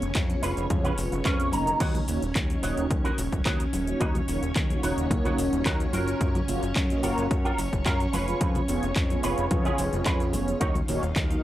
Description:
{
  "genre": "nu-disco, nu disco",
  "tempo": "109 BPM",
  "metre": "4/4",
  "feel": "straight",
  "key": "Eb minor",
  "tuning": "A4 = 440 Hz",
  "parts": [
    { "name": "mellow synth brass", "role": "accompaniment", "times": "0.0-11.4 s", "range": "Bb3 to Eb5", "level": "-32 LUFS", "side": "right 1 dB", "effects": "chorus, sidechain pumping, tape echo" },
    { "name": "string machine, full ensemble", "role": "sustained chords", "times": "0.0-11.4 s", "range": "Db4 to F5", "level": "-32 LUFS", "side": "equal", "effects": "ensemble chorus, sidechain pumping" },
    { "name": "fat analog bass", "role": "bass", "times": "0.0-11.4 s", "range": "Eb1 to Gb2", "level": "-31 LUFS", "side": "equal", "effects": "none" },
    { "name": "house drum kit", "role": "drums", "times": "0.0-11.4 s", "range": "crash cymbal, handclaps, hi-hat, shaker", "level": "-34 LUFS", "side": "equal", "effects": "overdrive" },
    { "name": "electronic kick drum", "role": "drums", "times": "0.2-11.3 s", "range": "none", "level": "-28 LUFS", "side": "equal", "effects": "overdrive" },
    { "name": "congas", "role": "percussion", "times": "0.3-11.4 s", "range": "none", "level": "-37 LUFS", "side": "left 2 dB", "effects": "none" },
    { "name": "electric guitar with an envelope filter", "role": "riff", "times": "0.4-10.9 s", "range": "Db4 to Bb5", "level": "-31 LUFS", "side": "right 2 dB", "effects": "ensemble chorus, tape echo" }
  ],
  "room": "little or no reverb",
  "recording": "dry, gritty hardware recording",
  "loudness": "-23 LUFS",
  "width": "side -14 dB against mid",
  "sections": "0.0-11.4 A section",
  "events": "filter sweep on analog polysynth 0.0-11.4; clean electric guitar fill 1.0-1.8",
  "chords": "0.0 Db7/F; 1.8 Ebm7; 5.9 Gbmaj7; 8.1 Db7/F; 10.6 Ebm7",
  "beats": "0.15 0.70 1.25 | 1.80 2.35 2.90 3.46 | 4.00 4.56 5.11 5.66 | 6.21 6.76 7.31 7.86 | 8.41 8.96 9.51 10.06 | 10.61 11.16"
}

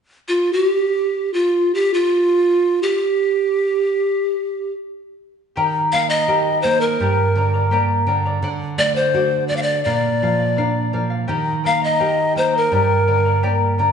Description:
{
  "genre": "andean folk",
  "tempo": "84 BPM",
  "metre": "2/4",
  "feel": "straight",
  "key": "G minor",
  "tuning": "A4 = 440 Hz",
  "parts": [
    { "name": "breathy pan flute", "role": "melody", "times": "0.3-13.8 s", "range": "F4 to F5", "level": "-17 LUFS", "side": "right 1 dB", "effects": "none" },
    { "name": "charango", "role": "accompaniment", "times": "5.6-13.9 s", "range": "G4 to Bb5", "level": "-21 LUFS", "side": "left 4 dB", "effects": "none" },
    { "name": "nylon-string guitar", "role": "accompaniment", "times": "5.6-13.9 s", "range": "G2 to G4", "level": "-21 LUFS", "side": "right 2 dB", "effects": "none" }
  ],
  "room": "wet recital hall reverb, RT60 1.4 s",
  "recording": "recorded in a church or concert hall, nothing above 10.5 kHz",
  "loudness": "-16 LUFS",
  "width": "side -7 dB against mid",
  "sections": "0.0-5.6 A section; 5.6-13.9 B section",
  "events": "none",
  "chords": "0.0 N.C.; 5.6 Eb; 7.0 Gm; 8.4 D; 9.9 Bb; 11.3 Eb; 12.7 Gm",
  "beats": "0.56 | 1.27 1.99 | 2.71 3.42 | 4.14 4.86 | 5.57 6.29 | 7.00 7.72 | 8.43 9.15 | 9.86 10.58 | 11.29 12.01 | 12.72 13.44"
}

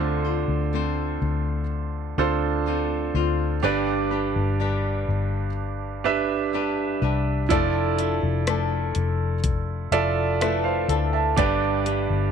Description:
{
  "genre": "pop ballad",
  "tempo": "62 BPM",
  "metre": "4/4",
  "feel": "straight",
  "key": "unclear",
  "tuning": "A4 = 441 Hz",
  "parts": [
    { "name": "clear concert grand piano", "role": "accompaniment", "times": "0.0-12.3 s", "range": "G2 to A5", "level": "-25 LUFS", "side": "right 8 dB", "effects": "none" },
    { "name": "flamenco guitar", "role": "arpeggios", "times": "0.0-12.3 s", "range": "D3 to C5", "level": "-30 LUFS", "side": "left 14 dB", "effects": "none" },
    { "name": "vintage muted fingered electric bass", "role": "bass", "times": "0.0-12.3 s", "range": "F1 to D2", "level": "-26 LUFS", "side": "left 3 dB", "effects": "none" },
    { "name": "smooth R&B drum kit", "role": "drums", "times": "7.5-12.1 s", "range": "hi-hat, kick drum, rim click", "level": "-27 LUFS", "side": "left 3 dB", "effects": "none" }
  ],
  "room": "light reverb, small room ambience",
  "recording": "1960s-style stereo with parts hard left and right",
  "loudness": "-21 LUFS",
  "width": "side -7 dB against mid",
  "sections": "0.0-12.3 A section",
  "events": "none",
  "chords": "0.0 Dm7; 3.6 G; 7.5 Dmadd9/F; 11.4 G",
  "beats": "0.73 1.70 2.67 | 3.64 4.60 5.57 6.54 | 7.51 8.47 9.44 10.41 | 11.38"
}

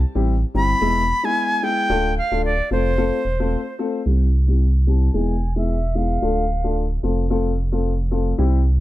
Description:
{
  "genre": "afrobeats",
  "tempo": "111 BPM",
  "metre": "4/4",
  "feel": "swing 55% on 16ths",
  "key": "unclear",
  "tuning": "A4 = 441 Hz",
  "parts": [
    { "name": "sub bass with octave", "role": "bass", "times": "0.0-8.8 s", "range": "D1 to C2", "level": "-19 LUFS", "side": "equal", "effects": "none" },
    { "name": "dark grand piano", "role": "accompaniment", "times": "0.2-8.6 s", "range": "G3 to A4", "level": "-23 LUFS", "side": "left 4 dB", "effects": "low-pass filter" },
    { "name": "bright reedy silver concert flute", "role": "melody", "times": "0.6-6.8 s", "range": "C5 to B5", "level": "-22 LUFS", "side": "right 1 dB", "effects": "low-pass filter, plate reverb, digital delay" }
  ],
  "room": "light reverb",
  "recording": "none",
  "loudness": "-18 LUFS",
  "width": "side -15 dB against mid",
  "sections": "0.0-4.1 A section; 4.1-8.8 B section",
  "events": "none",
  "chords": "0.0 C; 0.8 E; 1.9 Dm; 2.7 F; 4.1 C; 5.1 E; 6.2 Dm; 7.0 F",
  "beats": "0.28 0.82 1.36 | 1.90 2.44 2.98 3.52 | 4.06 4.60 5.14 5.68 | 6.22 6.76 7.30 7.84 | 8.38"
}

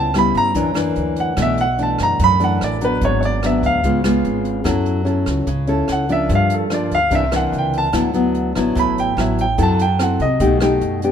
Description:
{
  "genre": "bossa nova",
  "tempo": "146 BPM",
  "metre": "4/4",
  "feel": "straight",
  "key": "unclear",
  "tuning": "A4 = 440 Hz",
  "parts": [
    { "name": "clear baby grand piano", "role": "melody", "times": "0.0-11.1 s", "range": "A4 to B5", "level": "-19 LUFS", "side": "right 2 dB", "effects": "none" },
    { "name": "nylon-string guitar", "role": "accompaniment", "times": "0.0-11.1 s", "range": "F#2 to A4", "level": "-19 LUFS", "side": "left 2 dB", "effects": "none" },
    { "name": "upright bass", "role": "bass", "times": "0.0-11.1 s", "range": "G#1 to C3", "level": "-22 LUFS", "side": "equal", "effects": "none" },
    { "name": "jazz brush drum kit", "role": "drums", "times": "0.1-11.1 s", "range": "hi-hat, kick drum, rim click", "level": "-27 LUFS", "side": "right 1 dB", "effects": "none" }
  ],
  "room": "light reverb",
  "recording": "minimal, uncompressed stereo recording",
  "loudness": "-15 LUFS",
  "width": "side -8 dB against mid",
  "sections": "0.0-11.1 A section",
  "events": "grand piano solo 0.0-11.1",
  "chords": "0.0 C#m7b5; 0.6 F#aug7; 1.4 Bm7; 3.0 G#m7b5; 3.8 C#7; 4.7 F#m7; 6.3 Gm7; 7.1 C9; 7.9 D69; 9.6 F#m7b5; 10.4 B7b13",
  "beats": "0.14 0.55 0.96 | 1.37 1.78 2.19 2.60 | 3.02 3.43 3.84 4.25 | 4.66 5.07 5.48 5.89 | 6.30 6.71 7.12 7.53 | 7.94 8.35 8.76 9.17 | 9.58 9.99 10.40 10.81"
}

